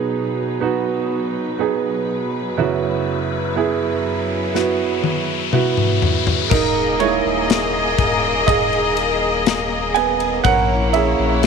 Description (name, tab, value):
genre	pop ballad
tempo	61 BPM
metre	4/4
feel	straight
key	unclear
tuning	A4 = 440 Hz
part	clear concert grand piano	accompaniment	0.0-11.5 s	F#2 to G#5	-19 LUFS	right 8 dB	none
part	warm studio string section	sustained chords	0.0-11.5 s	F#2 to D#5	-24 LUFS	left 4 dB	none
part	riser	sound effects	1.6-6.5 s	none	-28 LUFS	left 7 dB	none
part	modern studio drum kit	drums	4.6-11.5 s	crash cymbal, kick drum, ride cymbal, snare drum, toms	-21 LUFS	left 6 dB	none
part	rich studio violin section	second line	6.5-11.5 s	A#3 to D#5	-22 LUFS	left 3 dB	none
part	saturated sub bass	bass	6.5-11.5 s	D#1 to A#1	-26 LUFS	left 2 dB	none
room	light reverb, small room ambience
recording	1960s-style stereo with parts hard left and right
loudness	-16 LUFS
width	side -6 dB against mid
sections	0.0-6.5 A section; 6.5-11.5 B section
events	riser 1.6-6.5; drum fill 4.5-6.5; grand piano solo 6.5-11.5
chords	0.0 B; 2.6 F#7sus4; 6.5 D#sus4; 10.4 A#dim